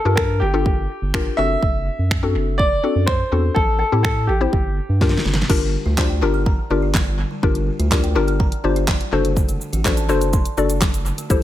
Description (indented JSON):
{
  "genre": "dance-pop",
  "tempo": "124 BPM",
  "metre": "4/4",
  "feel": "straight",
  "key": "G dorian",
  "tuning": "A4 = 439 Hz",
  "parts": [
    { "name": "clear baby grand piano", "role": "melody", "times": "0.0-5.2 s", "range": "G4 to E5", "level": "-22 LUFS", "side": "equal", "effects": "analog delay" },
    { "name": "mallet-like synth pluck", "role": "accompaniment", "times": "0.1-11.4 s", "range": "C4 to D5", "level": "-23 LUFS", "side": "left 6 dB", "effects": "chorus, sidechain pumping" },
    { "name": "round analog bass", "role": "bass", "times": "0.1-11.4 s", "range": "F#1 to A2", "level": "-21 LUFS", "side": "equal", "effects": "sidechain pumping" },
    { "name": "pop drum kit", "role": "drums", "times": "0.2-11.4 s", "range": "crash cymbal, finger snaps, handclaps, hi-hat, kick drum, shaker, snare drum", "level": "-20 LUFS", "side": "equal", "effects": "analog delay" },
    { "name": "buzzing kalimba", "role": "arpeggios", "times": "5.5-11.4 s", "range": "D3 to F#6", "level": "-30 LUFS", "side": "right 4 dB", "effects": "sidechain pumping, analog delay" }
  ],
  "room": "little or no reverb",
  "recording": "echo-heavy mix",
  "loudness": "-16 LUFS",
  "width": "side -13 dB against mid",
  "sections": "0.0-5.5 A section; 5.5-11.4 B section",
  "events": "drum fill 5.0-5.5",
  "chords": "0.0 Gm7; 1.4 D7/F#; 3.6 Am7; 4.5 Gm7; 9.1 D7/F#",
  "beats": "0.17 0.66 1.14 | 1.62 2.11 2.59 3.08 | 3.56 4.04 4.53 5.01 | 5.50 5.98 6.46 6.95 | 7.43 7.92 8.40 8.88 | 9.37 9.85 10.33 10.82 | 11.30"
}